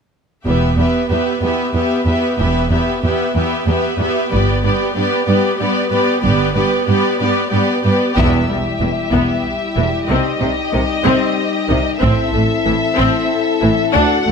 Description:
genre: cinematic, epic orchestral film score.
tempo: 94 BPM.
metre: 3/4.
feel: straight.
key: E minor.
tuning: A4 = 440 Hz.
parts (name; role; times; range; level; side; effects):
warm symphonic violin section; second line; 0.5-14.3 s; G4 to E5; -21 LUFS; equal; none.
rich studio viola section; accompaniment; 0.5-14.3 s; Eb3 to G4; -18 LUFS; equal; none.
rich symphonic cello section; bass; 0.5-14.3 s; D2 to C3; -20 LUFS; right 2 dB; none.
rich symphonic double bass section; bass; 0.5-14.3 s; E1 to D2; -20 LUFS; right 2 dB; none.
rich symphonic violin section; melody; 8.2-14.3 s; Eb5 to F#5; -21 LUFS; left 4 dB; none.
dark French horn section; sustained chords; 8.2-14.3 s; G3 to F#4; -21 LUFS; left 6 dB; none.
taiko ensemble; drums; 8.2-13.3 s; none; -23 LUFS; left 1 dB; none.
room: light reverb.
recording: close, detailed microphones.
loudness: -14 LUFS.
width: side -6 dB against mid.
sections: 0.5-8.2 A section; 8.2-14.3 B section.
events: build-up 8.2-14.3; band accent 8.2-8.8.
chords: 0.5 Em; 4.3 G; 8.2 Em; 10.1 Cm; 12.0 Am.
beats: | 0.47 1.11 1.75 | 2.39 3.03 3.67 | 4.31 4.96 5.60 | 6.24 6.88 7.52 | 8.16 8.81 9.45 | 10.09 10.73 11.38 | 12.02 12.66 13.30 | 13.95.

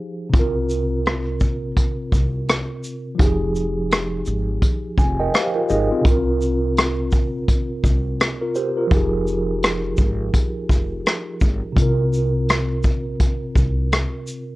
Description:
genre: lo-fi hip hop.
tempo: 84 BPM.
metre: 4/4.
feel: swing 60% on 16ths.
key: unclear.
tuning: A4 = 440 Hz.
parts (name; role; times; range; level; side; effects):
mellow tine electric piano; accompaniment; 0.0-14.6 s; C3 to Ab5; -23 LUFS; right 1 dB; medium stereo tremolo, low-pass filter.
upright bass; bass; 0.3-14.0 s; F1 to C2; -24 LUFS; equal; none.
vintage brush drum kit; drums; 0.3-14.5 s; hi-hat, kick drum, rim click, shaker; -18 LUFS; equal; none.
room: light reverb.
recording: worn, warbling old tape, cassette tape, warbly pitch drift.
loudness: -18 LUFS.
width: side -19 dB against mid.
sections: 0.3-14.6 A section.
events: break 0.0-0.3; tine electric piano fill 4.6-6.1.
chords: 0.3 C7sus4; 3.2 Fm9; 6.1 C7sus4; 8.9 Fm9; 11.8 C7sus4.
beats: | 0.34 1.05 1.77 2.48 | 3.19 3.91 4.62 5.34 | 6.05 6.77 7.48 8.20 | 8.91 9.62 10.34 11.05 | 11.77 12.48 13.20 13.91.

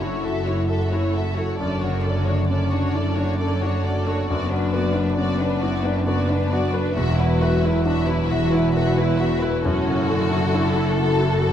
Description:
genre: cinematic, emotional film score for orchestra.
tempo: 45 BPM (dotted quarters).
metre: 6/8.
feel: rubato.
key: unclear.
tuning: A4 = 440 Hz.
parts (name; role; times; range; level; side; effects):
warm symphonic violin section; melody; 0.0-11.5 s; A4 to E5; -30 LUFS; left 3 dB; none.
warm symphonic violin section; second line; 0.0-11.5 s; D4 to A4; -30 LUFS; left 4 dB; none.
clear grand piano; accompaniment; 0.0-11.5 s; E2 to B4; -26 LUFS; left 1 dB; none.
warm symphonic viola section; accompaniment; 0.0-11.5 s; D3 to F#4; -30 LUFS; right 2 dB; none.
mellow French horn section; sustained chords; 0.0-11.5 s; F#3 to E4; -29 LUFS; left 2 dB; none.
concert harp; arpeggios; 0.0-11.5 s; E2 to F#5; -31 LUFS; left 5 dB; none.
rich symphonic cello section; bass; 0.0-11.5 s; E2 to F#2; -26 LUFS; right 2 dB; none.
rich symphonic double bass section; bass; 0.0-11.5 s; E1 to F#1; -25 LUFS; right 2 dB; none.
room: moderate scoring stage reverb, RT60 1.7 s.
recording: vinyl crackle.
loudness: -19 LUFS.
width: side -10 dB against mid.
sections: 0.0-11.5 A section.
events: none.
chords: 0.0 F#m7; 4.3 Bm/F#; 7.0 Esus2; 9.6 F#m7.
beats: 0.23 | 1.59 2.95 | 4.29 5.64 | 6.97 8.30 | 9.65 10.98.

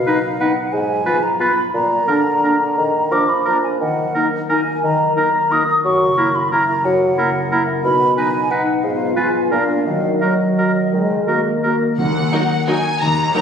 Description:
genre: classical, orchestral ballroom waltz.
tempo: 160-193 BPM.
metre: 3/4.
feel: rubato.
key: Eb minor.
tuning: A4 = 440 Hz.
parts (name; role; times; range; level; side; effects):
mellow hollow silver concert flute; second line; 0.0-11.6 s; Eb5 to Eb6; -19 LUFS; equal; none.
concert harp; arpeggios; 0.0-13.4 s; Gb2 to Bb5; -25 LUFS; left 5 dB; none.
bright clarinet; second line; 0.1-11.8 s; D4 to Gb4; -26 LUFS; right 1 dB; none.
warm oboe; second line; 0.1-11.8 s; Bb4 to B4; -22 LUFS; right 2 dB; none.
mellow French horn section; sustained chords; 0.1-12.0 s; Gb3 to F4; -22 LUFS; left 1 dB; none.
mellow bassoon; accompaniment; 0.7-11.2 s; Ab2 to Gb3; -21 LUFS; right 1 dB; none.
rich studio violin section; melody; 12.0-13.4 s; Gb5 to Bb5; -19 LUFS; left 2 dB; none.
clear studio cello section; bass; 12.0-13.3 s; Eb2; -24 LUFS; right 2 dB; none.
clear studio double bass section; bass; 12.0-13.3 s; Eb2; -25 LUFS; right 2 dB; none.
timpani; percussion; 12.0-12.5 s; Eb3; -24 LUFS; left 2 dB; none.
rich studio violin section; second line; 12.3-13.4 s; Gb4 to Bb4; -25 LUFS; left 2 dB; none.
clear studio viola section; accompaniment; 12.3-13.4 s; Gb3 to Eb4; -23 LUFS; right 2 dB; none.
room: wet scoring stage reverb, RT60 1.8 s.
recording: recorded on a phone in the room, club reverb.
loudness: -15 LUFS.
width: side -7 dB against mid.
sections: 0.0-12.0 A section; 12.0-13.4 A section.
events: none.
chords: 0.0 B; 0.7 Fdim/Ab; 1.7 Bb; 3.8 Ebm; 5.8 Gb7; 7.8 B; 8.8 Fdim/Ab; 9.5 Bb; 9.9 Ebm.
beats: 0.07 0.41 | 0.73 1.06 1.40 | 1.74 2.08 2.44 | 2.77 3.12 3.47 | 3.81 4.15 4.50 | 4.83 5.17 5.52 | 5.84 6.18 6.52 | 6.85 7.18 7.52 | 7.84 8.17 8.51 | 8.83 9.16 9.52 | 9.86 10.22 10.59 | 10.93 11.28 11.64 | 11.99 12.32 12.68 | 13.01 13.34.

